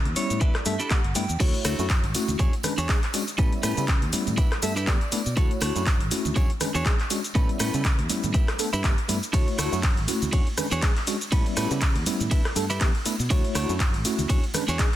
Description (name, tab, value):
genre	filtered disco house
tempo	121 BPM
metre	4/4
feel	swing 56% on 16ths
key	D major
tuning	A4 = 437 Hz
part	clean electric guitar	riff	0.0-14.9 s	C#4 to G5	-32 LUFS	right 3 dB	sidechain pumping
part	fingered electric bass	bass	0.0-14.8 s	G1 to C#3	-29 LUFS	equal	sidechain pumping
part	punchy analog drum machine	drums	0.1-15.0 s	crash cymbal, handclaps, hi-hat, ride cymbal, rim click, shaker	-29 LUFS	equal	sidechain pumping on hats, sidechain pumping on perc, sidechain pumping on cymbals
part	tine electric piano	accompaniment	0.2-14.9 s	G3 to C#5	-30 LUFS	equal	fast stereo tremolo, phaser, sidechain pumping
part	electronic kick drum	drums	0.4-14.9 s	none	-23 LUFS	equal	none
part	tambourine and congas	percussion	1.4-15.0 s	none	-37 LUFS	right 3 dB	sidechain pumping on perc
room	light reverb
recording	dense, heavily limited modern master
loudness	-22 LUFS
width	side -13 dB against mid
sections	0.0-15.0 A section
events	clean electric guitar fill 0.0-1.4, 4.4-5.4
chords	0.4 G6; 1.4 Dmaj7; 2.4 E13; 3.4 A9; 4.4 G6; 5.4 Dmaj7; 6.4 E13; 7.4 A9; 8.3 G6; 9.3 Dmaj7; 10.3 E13; 11.3 A9; 12.3 G6; 13.3 Dmaj7; 14.3 E13